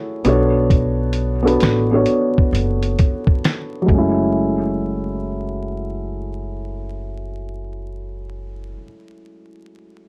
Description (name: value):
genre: lo-fi hip hop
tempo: 66 BPM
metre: 4/4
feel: swing 65% on 16ths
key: F# minor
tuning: A4 = 440 Hz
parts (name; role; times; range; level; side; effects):
- felt-muted upright piano; accompaniment; 0.0-10.1 s; F#3 to E5; -22 LUFS; equal; low-pass filter
- dusty soul sampler-style drum kit; drums; 0.2-4.2 s; hi-hat, kick drum, snare drum; -19 LUFS; equal; vintage 12-bit sampler grit
- upright bass; bass; 0.3-8.8 s; F#1 to B1; -26 LUFS; equal; none
room: light reverb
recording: vinyl crackle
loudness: -18 LUFS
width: mono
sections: 0.0-4.3 A section; 4.3-8.0 B section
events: filter sweep on felt piano 0.0-4.3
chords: 0.2 Bm9; 3.9 F#m9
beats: | 0.70 1.61 2.52 3.43 | 4.34 5.25 6.16 7.07